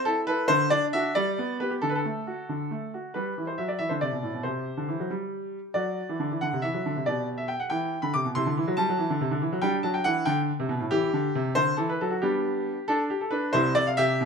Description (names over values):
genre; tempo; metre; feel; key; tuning
classical-period piano sonatina; 92 BPM (dotted quarters); 6/8; straight; G major; A4 = 440 Hz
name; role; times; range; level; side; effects
bright baby grand piano; solo; 0.0-14.3 s; C2 to D6; -24 LUFS; equal; none
room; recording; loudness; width
light reverb; close, detailed microphones; -24 LUFS; side -5 dB against mid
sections
0.0-3.2 A section; 3.2-13.6 B section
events
none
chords
0.5 D; 1.2 G; 1.8 D; 3.2 G; 3.8 E5; 4.5 C5; 5.8 D/F#; 6.4 D7; 7.1 G/B; 8.4 C; 9.6 G5; 10.9 C; 11.6 D; 12.2 G; 13.6 C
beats
| 0.50 1.16 | 1.82 2.49 | 3.16 3.82 | 4.47 5.12 | 5.77 6.42 | 7.07 7.71 | 8.36 8.99 | 9.63 10.28 | 10.92 11.57 | 12.23 12.89 | 13.56 14.21